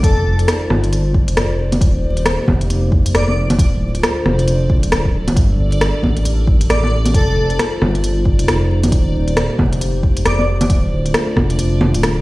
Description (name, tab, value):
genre	future garage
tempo	135 BPM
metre	4/4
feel	swing 60% on 16ths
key	unclear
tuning	A4 = 439 Hz
part	airy dreamy lead	melody	0.0-0.4, 3.1-3.3, 6.7-7.5, 10.3-10.4 s	A4 to D5	-23 LUFS	left 1 dB	chorus, phaser, tape echo
part	dark analog pad	sustained chords	0.0-12.2 s	A3 to C5	-23 LUFS	left 1 dB	wide subtle chorus, sidechain pumping
part	dark detuned saw bass	bass	0.0-12.2 s	D1 to A1	-17 LUFS	equal	sidechain pumping
part	electronic kick drum	drums	0.0-11.5 s	none	-16 LUFS	equal	none
part	organic electronic drum kit	drums	0.0-12.1 s	bongos, hi-hat, rim click	-18 LUFS	equal	none
part	backwards swelling texture	texture	0.4-12.2 s	D5	-32 LUFS	right 1 dB	built-in reverb
room	light reverb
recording	played on a big sound system in a bare room, large studio reverb, vinyl crackle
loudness	-13 LUFS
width	side -19 dB against mid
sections	0.0-12.2 A section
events	kick drops out 11.6-12.2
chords	0.0 F7; 1.8 Eb6; 3.6 Dm7; 5.4 Gmadd9; 7.1 F7; 8.9 Eb6; 10.7 Dm7